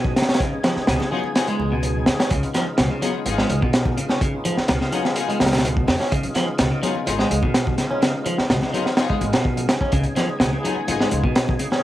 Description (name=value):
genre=breakbeat, breaks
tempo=126 BPM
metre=4/4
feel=straight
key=unclear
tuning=A4 = 440 Hz
part: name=tonewheel organ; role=sustained chords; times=0.0-11.8 s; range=C#3 to G#4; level=-29 LUFS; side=equal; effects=overdrive, chorus vibrato, slow rotary speaker, sidechain pumping, cassette tape
part: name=clean electric guitar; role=riff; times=0.0-11.8 s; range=B2 to C#4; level=-24 LUFS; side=equal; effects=tube saturation, vintage 12-bit sampler grit, cassette tape, tape echo
part: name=crunchy breakbeat drum kit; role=drums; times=0.0-11.8 s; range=hi-hat, kick drum, snare drum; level=-21 LUFS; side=equal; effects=none
part: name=congas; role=percussion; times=0.0-11.8 s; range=none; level=-37 LUFS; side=left 8 dB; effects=none
part: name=upright bass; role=bass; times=0.8-11.2 s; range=G#1 to E#2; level=-25 LUFS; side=equal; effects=none
part: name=bright studio string section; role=stabs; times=1.1-11.0 s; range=B3 to G#4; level=-28 LUFS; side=left 8 dB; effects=cassette tape, tape echo
room=light reverb, small room ambience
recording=home recording on cassette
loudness=-18 LUFS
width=side -14 dB against mid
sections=0.0-11.8 A section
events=none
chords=0.0 C#7